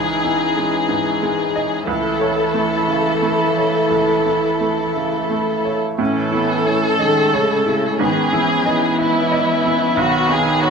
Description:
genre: neoclassical piano and strings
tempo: 60 BPM (dotted quarters)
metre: 6/8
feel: rubato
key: unclear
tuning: A4 = 438 Hz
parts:
  - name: muted chamber violin section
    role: melody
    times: 0.0-10.7 s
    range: E4 to A4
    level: -19 LUFS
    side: left 2 dB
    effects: none
  - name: muted cello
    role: second line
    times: 0.0-10.7 s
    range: C#3 to E3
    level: -23 LUFS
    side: right 4 dB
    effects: none
  - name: bright upright piano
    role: accompaniment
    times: 0.0-10.7 s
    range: B1 to E5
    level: -23 LUFS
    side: right 2 dB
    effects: none
  - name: muted viola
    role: accompaniment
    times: 0.0-10.7 s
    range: G#3 to E4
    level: -24 LUFS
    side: right 1 dB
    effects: none
  - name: hand-pumped harmonium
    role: sustained chords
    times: 0.0-10.7 s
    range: E3 to E5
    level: -28 LUFS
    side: equal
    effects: none
room: moderate small room ambience, RT60 0.5 s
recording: minimal, uncompressed stereo recording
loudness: -15 LUFS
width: side -5 dB against mid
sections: 0.0-6.0 A section; 6.0-10.7 B section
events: none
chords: 0.0 C#madd9; 1.9 A/C#; 6.0 Amaj7; 8.0 Emaj7/G#; 10.0 Badd9

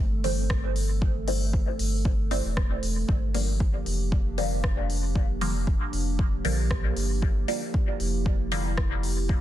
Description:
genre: dub techno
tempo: 116 BPM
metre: 4/4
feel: swing 56% on 16ths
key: unclear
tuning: A4 = 440 Hz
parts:
  - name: warbly tape-like pad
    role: sustained chords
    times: 0.0-9.4 s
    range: E3 to A4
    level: -34 LUFS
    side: right 2 dB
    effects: chorus, built-in reverb, sidechain pumping
  - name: pure sine sub bass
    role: bass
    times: 0.0-9.4 s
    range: E1 to Bb1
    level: -28 LUFS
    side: equal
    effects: sidechain pumping
  - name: filtered dub chord stab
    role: stabs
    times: 0.2-8.7 s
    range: D3 to C4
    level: -33 LUFS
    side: equal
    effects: phaser, sidechain pumping, dub echo
  - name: deep house drum kit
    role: drums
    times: 0.2-9.1 s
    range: hi-hat, rim click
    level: -36 LUFS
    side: left 2 dB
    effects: studio reverb, soft clipping on snare, dub echo
  - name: electronic kick drum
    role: drums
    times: 0.5-9.4 s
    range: none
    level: -26 LUFS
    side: equal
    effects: overdrive, studio reverb
room: digital ambience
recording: dense, heavily limited modern master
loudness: -24 LUFS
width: side -12 dB against mid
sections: 0.0-9.4 A section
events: none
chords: 0.0 Am7; 3.1 Gm7

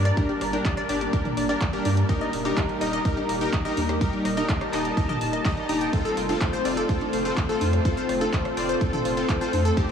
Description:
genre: progressive house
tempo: 125 BPM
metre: 4/4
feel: straight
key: unclear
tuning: A4 = 438 Hz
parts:
  - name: lush unison pad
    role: sustained chords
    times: 0.0-9.9 s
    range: G3 to A5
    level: -28 LUFS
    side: equal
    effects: chorus, phaser, sidechain pumping
  - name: round analog bass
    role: bass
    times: 0.0-9.7 s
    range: Eb1 to G2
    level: -27 LUFS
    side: equal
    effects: sidechain pumping
  - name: glassy wavetable pluck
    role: arpeggios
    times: 0.1-9.8 s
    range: F4 to Bb5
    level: -29 LUFS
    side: left 2 dB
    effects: chorus, sidechain pumping, tape echo
  - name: deep house drum kit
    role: drums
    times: 0.1-9.9 s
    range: handclaps, hi-hat, rim click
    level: -34 LUFS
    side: right 1 dB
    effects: overdrive
  - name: supersaw stab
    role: stabs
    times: 0.2-9.9 s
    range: C4 to Eb5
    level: -29 LUFS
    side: left 1 dB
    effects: sidechain pumping, tape echo
  - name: electronic kick drum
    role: drums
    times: 0.2-9.9 s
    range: none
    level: -25 LUFS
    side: equal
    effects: none
  - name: electronic congas and toms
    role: percussion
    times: 0.5-9.6 s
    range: none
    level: -37 LUFS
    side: right 1 dB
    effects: none
room: moderate huge ambient reverb, RT60 8.0 s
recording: dreamy mix soaked in reverb, small room ambience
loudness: -22 LUFS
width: side -8 dB against mid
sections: 0.0-9.9 A section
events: none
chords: 0.0 Gm; 2.1 Eb; 5.9 F

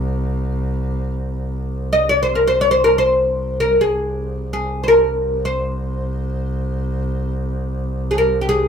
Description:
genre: Arabic maqam ensemble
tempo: free time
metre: none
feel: none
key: C maqam bayati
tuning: A4 = 439 Hz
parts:
  - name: oud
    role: melody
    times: 0.0-8.7 s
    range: G4 to F5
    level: -15 LUFS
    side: left 1 dB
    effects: none
  - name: clear double bass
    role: drone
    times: 0.0-8.7 s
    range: C2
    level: -22 LUFS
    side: equal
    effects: none
room: moderate studio reverb, RT60 0.6 s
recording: minimal, uncompressed stereo recording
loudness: -17 LUFS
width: side -7 dB against mid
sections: 0.0-8.7 A section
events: none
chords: none

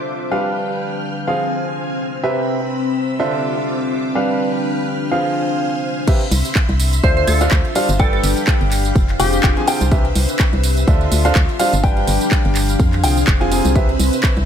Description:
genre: piano house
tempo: 125 BPM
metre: 4/4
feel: swing 56% on 16ths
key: C major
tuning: A4 = 441 Hz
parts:
  - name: string machine, violins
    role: sustained chords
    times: 0.0-14.5 s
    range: C4 to F6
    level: -25 LUFS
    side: left 2 dB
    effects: ensemble chorus, sidechain pumping
  - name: bright upright piano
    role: riff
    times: 0.0-13.9 s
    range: C3 to Ab5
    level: -21 LUFS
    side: right 1 dB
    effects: sidechain pumping, dub echo
  - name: deep dark ambient pad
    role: texture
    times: 0.0-14.5 s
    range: C4 to E6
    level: -24 LUFS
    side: left 1 dB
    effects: chorus, built-in reverb, sidechain pumping
  - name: electronic kick drum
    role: drums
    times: 6.1-14.3 s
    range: none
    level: -16 LUFS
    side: equal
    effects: none
  - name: house drum kit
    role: drums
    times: 6.1-14.5 s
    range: crash cymbal, handclaps, hi-hat, tambourine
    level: -23 LUFS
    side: right 2 dB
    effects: low-pass filter on snare, low-pass filter on hats, low-pass filter on cymbals, low-pass filter on perc
  - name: organ-like FM bass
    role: bass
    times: 6.3-14.5 s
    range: F1 to F2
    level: -18 LUFS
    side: equal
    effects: sidechain pumping
  - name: glassy wavetable pluck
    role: melody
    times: 7.0-9.7 s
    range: G4 to C5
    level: -23 LUFS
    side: left 1 dB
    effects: chorus, dub echo
room: moderate spring reverb, RT60 1.1 s, digital ambience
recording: echo-heavy mix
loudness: -14 LUFS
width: side -8 dB against mid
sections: 0.0-6.1 A section; 6.1-14.5 B section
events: drop 6.1-14.5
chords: 0.3 G7; 1.3 Fm; 2.2 Cmaj7; 3.2 Dm9; 4.2 G7; 5.1 Fm; 6.1 Cmaj7; 7.0 Dm9; 8.0 G7; 9.0 Fm; 9.9 Cmaj7; 10.9 Dm9; 11.8 G7; 12.8 Fm; 13.8 Cmaj7

